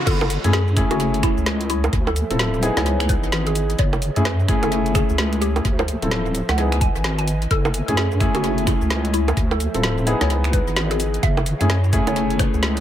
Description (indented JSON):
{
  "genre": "UK garage, two-step garage",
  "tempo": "129 BPM",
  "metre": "4/4",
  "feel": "swing 61% on 16ths",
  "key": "F# minor",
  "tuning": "A4 = 442 Hz",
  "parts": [
    { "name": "airy breathy pad", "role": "sustained chords", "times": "0.0-12.8 s", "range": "E3 to G#5", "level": "-33 LUFS", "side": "right 1 dB", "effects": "chorus, sidechain pumping" },
    { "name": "dark concert grand piano", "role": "stabs", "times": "0.0-12.8 s", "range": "A3 to A4", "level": "-24 LUFS", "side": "left 2 dB", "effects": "dub echo" },
    { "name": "mallet-like synth pluck", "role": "melody", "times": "0.1-12.7 s", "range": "E4 to G#5", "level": "-28 LUFS", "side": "equal", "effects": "phaser, wide subtle chorus, vintage 12-bit sampler grit, dub echo" },
    { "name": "deep soft wobble bass", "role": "bass", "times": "0.1-12.8 s", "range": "D1 to F#2", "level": "-21 LUFS", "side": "equal", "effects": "chorus" },
    { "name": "electronic kick drum", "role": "drums", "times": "0.1-12.5 s", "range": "none", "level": "-21 LUFS", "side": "equal", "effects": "none" },
    { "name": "garage drum kit", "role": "drums", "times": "0.1-12.8 s", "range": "bongos, crash cymbal, finger snaps, hi-hat, shaker, snare drum", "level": "-25 LUFS", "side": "right 2 dB", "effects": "low-pass filter on perc, low-pass filter on hats, low-pass filter on cymbals, low-pass filter on snare, low-pass filter on room, tape echo" }
  ],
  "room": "light reverb",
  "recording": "echo-heavy mix",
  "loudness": "-17 LUFS",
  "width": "side -11 dB against mid",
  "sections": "0.1-12.8 A section",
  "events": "drop 0.1-12.8",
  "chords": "0.1 F#m7; 1.9 Dm7; 2.9 C#m7; 3.8 F#m7; 5.6 Dm7; 6.6 C#m7; 7.5 F#m7; 9.4 Dm7; 10.3 C#m7; 11.2 F#m7"
}